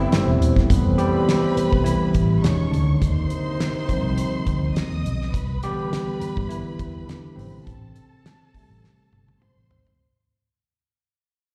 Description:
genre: lush 1970s-style soul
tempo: 103 BPM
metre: 4/4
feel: swing 54% on 16ths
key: unclear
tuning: A4 = 440 Hz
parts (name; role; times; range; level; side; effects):
- overdriven tine electric piano; accompaniment; 0.0-10.0 s; C3 to G4; -26 LUFS; equal; subtle chorus
- fingered electric bass; bass; 0.0-9.9 s; Eb1 to G2; -25 LUFS; equal; none
- clear trombone section; stabs; 0.1-5.0 s; G#2 to Eb4; -32 LUFS; equal; slapback echo
- damped 70s drum kit; drums; 0.1-10.0 s; hi-hat, kick drum, snare drum, toms; -24 LUFS; equal; none
- warm symphonic violin section; second line; 0.7-10.0 s; A4 to Eb6; -36 LUFS; equal; slapback echo
room: small room ambience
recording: live gig heard through the venue's PA, recital hall reverb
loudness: -22 LUFS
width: mono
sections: 0.7-10.0 A section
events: band accent 0.0-0.7; fade-out 0.7-10.0; tine electric piano solo 0.7-10.0; drum fill 8.8-10.0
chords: 0.0 Am7; 0.7 Fmaj9#11; 2.4 E69; 3.0 Eb69; 5.3 Cmaj7; 7.7 Am7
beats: 0.12 | 0.70 1.28 1.86 2.44 | 3.02 3.60 4.17 4.76 | 5.34 5.92 6.50 7.08 | 7.67 8.25 8.83 9.42

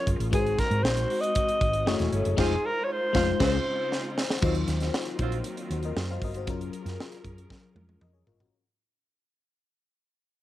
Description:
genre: polished 1980s jazz-funk pop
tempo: 117 BPM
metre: 4/4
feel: straight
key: Eb dorian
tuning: A4 = 440 Hz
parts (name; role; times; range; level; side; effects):
- breathy alto saxophone; melody; 0.0-4.1 s; Ab4 to Eb5; -28 LUFS; equal; cassette tape, plate reverb
- FM electric piano; accompaniment; 0.0-8.6 s; Gb3 to F5; -32 LUFS; left 6 dB; wide subtle chorus, cassette tape, plate reverb
- warm studio string section; sustained chords; 0.0-8.5 s; Db3 to Bb4; -38 LUFS; right 1 dB; cassette tape, plate reverb
- hollow-body short-scale fingered electric bass; bass; 0.1-8.5 s; Fb1 to Ab2; -29 LUFS; right 1 dB; none
- crisp fusion drum kit; drums; 0.1-8.5 s; crash cymbal, hi-hat, kick drum, snare drum, toms; -30 LUFS; right 1 dB; none
- mellow horn section; second line; 2.4-5.4 s; Gb3 to C5; -38 LUFS; right 8 dB; cassette tape, plate reverb, tape echo
room: light reverb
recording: home recording on cassette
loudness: -24 LUFS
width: side -14 dB against mid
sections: 0.0-4.4 A section; 4.4-8.5 B section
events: band accent 2.4-4.4; drum fill 3.9-4.4, 7.5-8.5; fade-out 4.4-8.5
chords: 0.3 Ab7; 1.9 Gbm7; 2.4 Fm7; 3.4 Dbmaj7; 4.4 Ebm69; 6.5 Gbmaj7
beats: | 0.33 0.84 1.35 1.86 | 2.38 2.89 3.40 3.92 | 4.43 4.94 5.45 5.96 | 6.48 6.99 7.50 8.01

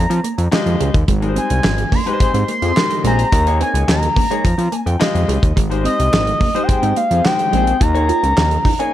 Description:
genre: early-eighties boogie funk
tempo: 107 BPM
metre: 4/4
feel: straight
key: Ab major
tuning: A4 = 436 Hz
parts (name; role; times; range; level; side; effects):
- expressive synth lead; melody; 0.0-8.9 s; Eb5 to C6; -19 LUFS; left 1 dB; chorus, slapback echo
- fat analog bass; bass; 0.0-8.6 s; Ab1 to F3; -17 LUFS; equal; none
- mellow electric guitar; riff; 0.1-8.9 s; Ab3 to F4; -26 LUFS; right 6 dB; ensemble chorus
- damped 70s drum kit; drums; 0.1-8.9 s; handclaps, hi-hat, kick drum, snare drum; -18 LUFS; equal; gated reverb
- clear concert grand piano; accompaniment; 0.5-8.9 s; G3 to Ab5; -24 LUFS; left 4 dB; tube saturation
- analog synth brass; second line; 2.2-3.3, 6.7-7.8 s; C4 to C5; -25 LUFS; left 6 dB; chorus
room: little or no reverb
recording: none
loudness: -14 LUFS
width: side -12 dB against mid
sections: 0.0-8.9 A section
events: grand piano fill 4.4-5.6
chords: 0.0 Fm9; 1.1 Abmaj7; 3.3 Eb7sus4; 4.4 Fm9; 5.6 Abmaj7; 7.8 Eb7sus4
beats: 0.52 | 1.08 1.64 2.21 2.77 | 3.33 3.89 4.45 5.01 | 5.57 6.13 6.69 7.25 | 7.81 8.37 8.93

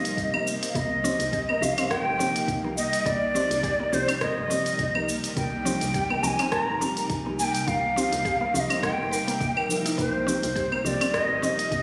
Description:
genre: organic downtempo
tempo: 104 BPM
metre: 4/4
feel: swing 56% on 16ths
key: C minor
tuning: A4 = 440 Hz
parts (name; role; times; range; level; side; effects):
- breathy ney; melody; 0.0-11.8 s; C5 to Bb5; -29 LUFS; equal; delay
- muted felt-like synth keys; accompaniment; 0.0-11.8 s; F3 to Bb4; -36 LUFS; equal; chorus, sidechain pumping, tape echo
- granular cloud pad; sustained chords; 0.0-11.8 s; C3 to F4; -38 LUFS; equal; built-in reverb, sidechain pumping
- mallet-like synth pluck; arpeggios; 0.0-11.6 s; Bb3 to Bb4; -35 LUFS; equal; chorus, tape echo
- woody FM bass; bass; 0.0-11.8 s; G1 to C2; -38 LUFS; equal; sidechain pumping
- organic electronic drum kit; drums; 0.1-11.8 s; cabasa, claves, hi-hat, rim click; -33 LUFS; equal; none
- electronic kick drum; drums; 0.2-11.8 s; none; -37 LUFS; equal; none
room: moderate lush hall reverb, RT60 2.1 s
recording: recorded on a phone in the room, studio reverb, compression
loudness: -26 LUFS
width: mono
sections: 0.0-11.8 A section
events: none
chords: 0.0 Cm7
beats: 0.17 | 0.75 1.33 1.91 2.48 | 3.06 3.64 4.21 4.79 | 5.37 5.94 6.52 7.10 | 7.67 8.25 8.83 9.41 | 9.98 10.56 11.14 11.71

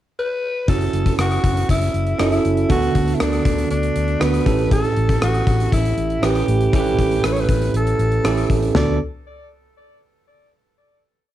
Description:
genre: 1980s-style pop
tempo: 119 BPM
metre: 4/4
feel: straight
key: D major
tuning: A4 = 440 Hz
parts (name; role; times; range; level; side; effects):
- raspy alto saxophone; melody; 0.2-9.0 s; D4 to D5; -23 LUFS; left 2 dB; none
- bell-like tine electric piano; accompaniment; 0.7-9.0 s; D2 to B4; -20 LUFS; right 5 dB; fast stereo tremolo, cassette tape
- vintage muted fingered electric bass; bass; 0.7-9.0 s; F#1 to D2; -22 LUFS; left 1 dB; none
- gated 80s drum kit; drums; 0.7-8.9 s; hi-hat, kick drum, rim click, snare drum, toms; -21 LUFS; left 2 dB; cassette tape
room: moderate studio ambience, RT60 0.5 s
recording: home recording on cassette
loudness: -16 LUFS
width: side -12 dB against mid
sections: 0.0-0.7 pickup bar; 0.7-8.7 verse; 8.7-10.8 final chord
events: none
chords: 0.0 N.C.; 0.7 F#m7; 2.7 D6; 4.5 A7; 8.7 D6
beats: 0.18 | 0.68 1.19 1.69 2.19 | 2.70 3.20 3.71 4.21 | 4.71 5.22 5.72 6.23 | 6.73 7.24 7.74 8.24 | 8.75

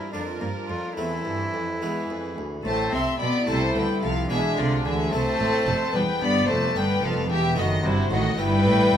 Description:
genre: classical, baroque-style concerto movement with solo episodes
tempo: 73 BPM (dotted quarters)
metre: 6/8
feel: straight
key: A minor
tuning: A4 = 440 Hz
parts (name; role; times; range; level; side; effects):
- rich cello; melody; 0.0-9.0 s; C3 to F4; -27 LUFS; left 2 dB; none
- rich chamber violin section; melody; 0.0-9.0 s; B4 to C6; -31 LUFS; left 6 dB; none
- warm chamber violin section; second line; 0.0-9.0 s; E4 to E5; -28 LUFS; equal; none
- dark chamber viola section; accompaniment; 0.0-9.0 s; E3 to F#4; -32 LUFS; equal; none
- harpsichord; accompaniment; 0.0-9.0 s; D2 to G4; -32 LUFS; equal; none
- warm chamber cello section; bass; 0.1-9.0 s; D2 to D3; -29 LUFS; right 2 dB; none
- warm studio double bass section; bass; 2.7-9.0 s; E1 to D2; -29 LUFS; right 3 dB; none
room: moderate recital hall reverb, RT60 1.7 s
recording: close, detailed microphones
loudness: -21 LUFS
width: side -9 dB against mid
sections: 0.0-2.6 A section; 2.6-9.0 B section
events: none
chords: 0.0 Bb; 1.0 Am/E; 1.8 E; 2.6 Am; 4.3 E7/B; 5.1 Am; 5.9 Em; 7.6 B5/F#; 8.4 Em/G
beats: 0.13 | 0.97 1.81 | 2.65 3.47 | 4.29 5.13 | 5.94 6.76 | 7.57 8.38

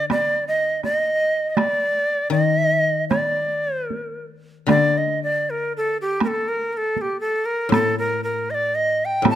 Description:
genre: japanese traditional, Japanese chamber music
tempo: 74-83 BPM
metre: 2/4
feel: rubato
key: D miyako bushi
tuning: A4 = 441 Hz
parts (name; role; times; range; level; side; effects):
- breathy bright shakuhachi; melody; 0.0-9.4 s; G4 to A5; -20 LUFS; right 1 dB; none
- koto; accompaniment; 0.0-9.4 s; A2 to Eb3; -25 LUFS; left 6 dB; none
- taiko ensemble; percussion; 0.1-9.4 s; none; -22 LUFS; right 3 dB; none
room: light reverb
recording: close, detailed microphones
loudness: -19 LUFS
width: side -11 dB against mid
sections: 0.0-4.7 A section; 4.7-9.4 B section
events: none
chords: none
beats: | 0.08 0.82 | 1.56 2.32 | 3.09 3.88 | 4.68 5.46 | 6.21 6.96 | 7.72 8.47 | 9.25

